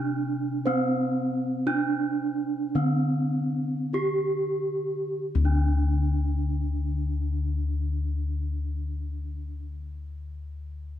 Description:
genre	Javanese gamelan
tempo	44-65 BPM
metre	4/4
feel	straight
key	unclear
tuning	A4 = 440 Hz
part	gamelan-type bronze metallophone	melody	0.0-9.7 s	C4-25c to G4	-28 LUFS	right 2 dB	none
part	gamelan-type bossed gongs	bass	0.0-9.6 s	D2 to C5-25c	-28 LUFS	left 2 dB	none
room	light reverb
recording	close, detailed microphones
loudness	-24 LUFS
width	side -11 dB against mid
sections	0.0-5.2 A section; 5.2-10.7 B section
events	slowing down 0.0-5.2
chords	none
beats	| 0.66 1.67 2.75 3.94 | 5.24 6.60 7.96 9.33

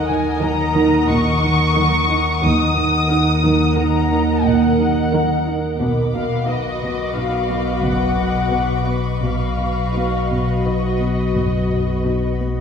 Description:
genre	cinematic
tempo	82-90 BPM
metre	5/4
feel	straight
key	unclear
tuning	A4 = 440 Hz
part	muted symphonic violin section	melody	0.0-12.1 s	B4 to Eb6	-22 LUFS	left 2 dB	none
part	muted symphonic viola section	accompaniment	0.0-12.6 s	Eb4 to B4	-32 LUFS	equal	none
part	glassy FM pad	sustained chords	0.0-12.6 s	F#4 to Gb5	-24 LUFS	equal	ensemble chorus, built-in reverb
part	analog drone	drone	0.0-12.6 s	B1 to Eb2	-20 LUFS	equal	chorus
part	muted symphonic violin section	texture	0.0-12.4 s	Bb5 to Eb6	-31 LUFS	left 4 dB	none
part	muted chamber cello section	riff	0.1-12.6 s	B2 to Eb4	-23 LUFS	right 1 dB	none
part	muted symphonic cello section	bass	1.1-11.9 s	Eb2 to B2	-25 LUFS	right 2 dB	none
part	muted symphonic double bass section	bass	1.1-11.9 s	F#1 to Eb2	-27 LUFS	right 1 dB	none
room	wet scoring stage reverb, RT60 1.4 s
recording	heard from further back in the room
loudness	-16 LUFS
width	side -7 dB against mid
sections	0.0-12.6 A section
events	none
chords	0.0 Ebm; 5.8 B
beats	0.42 1.09 1.76 | 2.43 3.10 3.78 4.45 5.12 | 5.80 6.47 7.14 7.82 8.51 | 9.23 9.95 10.65 11.36 12.05

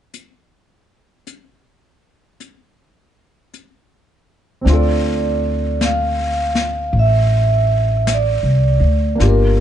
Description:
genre	jazz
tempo	53 BPM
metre	4/4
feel	swing 67% on 8ths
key	D minor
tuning	A4 = 440 Hz
part	jazz brush drum kit	drums	0.1-9.6 s	brushed snare drum, hi-hat, snare drum	-27 LUFS	left 4 dB	none
part	warm grand piano	accompaniment	4.6-9.6 s	Bb3 to A4	-22 LUFS	equal	none
part	vibraphone with soft mallets	melody	4.7-9.6 s	Bb4 to F5	-19 LUFS	right 4 dB	none
part	upright bass	bass	4.7-9.6 s	G1 to D2	-16 LUFS	equal	none
room	little or no reverb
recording	dark, warm production, nothing above 10.5 kHz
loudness	-14 LUFS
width	side -10 dB against mid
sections	0.1-4.7 A section; 4.7-9.6 B section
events	none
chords	0.1 N.C.; 4.7 Dm7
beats	| 0.14 1.27 2.40 3.54 | 4.67 5.80 6.93 8.07 | 9.20

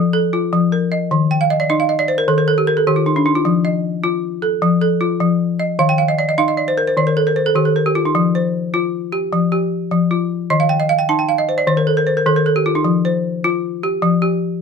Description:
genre	west african traditional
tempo	102 BPM (dotted quarters)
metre	12/8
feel	straight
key	F mixolydian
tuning	A4 = 437 Hz
part	balafon	solo	0.0-14.6 s	Eb3 to A5	-14 LUFS	left 1 dB	none
room	light reverb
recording	close, detailed microphones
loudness	-14 LUFS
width	side -6 dB against mid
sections	0.0-8.1 A section; 8.1-14.6 A section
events	balafon fill 1.3-3.5, 5.8-8.1, 10.5-12.9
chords	0.0 F; 1.1 Eb5; 3.5 F; 5.8 N.C.; 8.1 F5; 10.5 Ebadd9(#11); 12.9 F5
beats	0.52 | 1.11 1.69 2.28 2.87 | 3.45 4.04 4.63 5.21 | 5.80 6.39 6.97 7.56 | 8.15 8.74 9.32 9.91 | 10.50 11.09 11.67 12.26 | 12.85 13.44 14.03 14.62

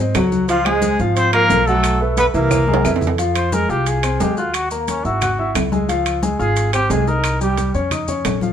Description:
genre	Afro-Cuban jazz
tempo	178 BPM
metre	4/4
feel	straight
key	F minor from 3.2 s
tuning	A4 = 439 Hz
part	breathy trumpet	melody	0.0-7.7 s	Bb3 to C5	-20 LUFS	equal	none
part	warm tenor saxophone	second line	0.0-3.0 s	F3 to C4	-23 LUFS	right 1 dB	none
part	warm grand piano	accompaniment	0.0-8.5 s	E3 to Gb6	-20 LUFS	left 1 dB	none
part	upright bass	bass	0.0-8.5 s	Ab1 to Ab2	-21 LUFS	equal	none
part	claves	percussion	0.1-8.4 s	none	-31 LUFS	left 3 dB	none
part	maracas	percussion	0.1-8.5 s	none	-33 LUFS	left 4 dB	none
part	timbales	percussion	0.1-8.4 s	none	-25 LUFS	right 7 dB	none
part	congas	percussion	0.2-8.5 s	none	-26 LUFS	left 5 dB	none
room	moderate studio reverb, RT60 0.8 s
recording	minimal, uncompressed stereo recording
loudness	-15 LUFS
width	side -9 dB against mid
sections	0.0-3.2 A section; 3.2-8.5 B section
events	drum fill 2.5-3.2; trumpet solo 3.2-8.5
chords	0.5 Dbmaj7; 1.8 B5; 2.5 Caug7; 3.2 Fm7; 4.5 Ebm; 5.2 Dbmadd11/Ab; 5.9 Dbmaj9; 7.2 Cm; 7.9 Bbmadd11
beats	0.15 | 0.49 0.82 1.16 1.50 | 1.84 2.18 2.51 2.85 | 3.19 3.53 3.87 4.20 | 4.54 4.88 5.22 5.55 | 5.89 6.23 6.57 6.90 | 7.24 7.58 7.91 8.25

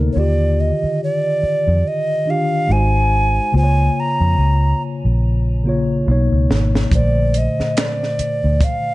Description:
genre	R&B, neo-soul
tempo	71 BPM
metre	4/4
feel	swing 58% on 16ths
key	unclear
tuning	A4 = 441 Hz
part	mellow tine electric piano	accompaniment	0.0-8.9 s	Bb2 to Db5	-21 LUFS	left 1 dB	slow stereo tremolo
part	vintage muted fingered electric bass	bass	0.0-8.6 s	Ab1 to F2	-16 LUFS	equal	none
part	alto ocarina	melody	0.1-8.9 s	Db5 to Bb5	-20 LUFS	right 1 dB	none
part	compact cocktail drum kit	drums	6.5-8.8 s	handclaps, hi-hat, kick drum, snare drum	-20 LUFS	equal	none
room	studio reverb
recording	dark, warm production, nothing above 10.6 kHz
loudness	-14 LUFS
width	side -18 dB against mid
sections	0.0-8.9 A section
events	drum fill 5.2-6.9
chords	0.2 Ebmaj9; 2.7 Ab7; 3.5 Db6; 6.1 Bmaj9; 6.9 Bbmaj9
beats	| 0.15 1.00 1.84 2.69 | 3.53 4.38 5.22 6.07 | 6.91 7.76 8.60

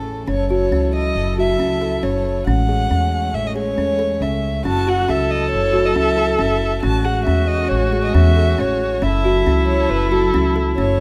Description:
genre	contemporary instrumental, chamber music in an uneven meter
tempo	137 BPM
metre	5/4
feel	straight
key	unclear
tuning	A4 = 440 Hz
part	dark violin	melody	0.0-11.0 s	A4 to A5	-24 LUFS	equal	none
part	dark chamber string section	sustained chords	0.0-11.0 s	E3 to A4	-30 LUFS	equal	none
part	kalimba	arpeggios	0.0-11.0 s	C#4 to A4	-24 LUFS	equal	none
part	upright bass	bass	0.0-11.0 s	F#1 to E2	-22 LUFS	equal	none
part	warm viola	second line	4.6-11.0 s	E4 to A4	-24 LUFS	equal	none
room	light reverb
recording	close, detailed microphones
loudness	-18 LUFS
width	mono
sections	0.0-11.0 A section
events	none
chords	0.3 F#m7; 2.5 Amaj7; 4.7 F#m7; 6.8 Amaj7; 9.0 F#m7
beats	| 0.28 0.72 1.15 1.59 2.03 | 2.47 2.90 3.34 3.78 4.21 | 4.65 5.09 5.53 5.96 6.40 | 6.84 7.28 7.71 8.15 8.59 | 9.03 9.46 9.90 10.34 10.78

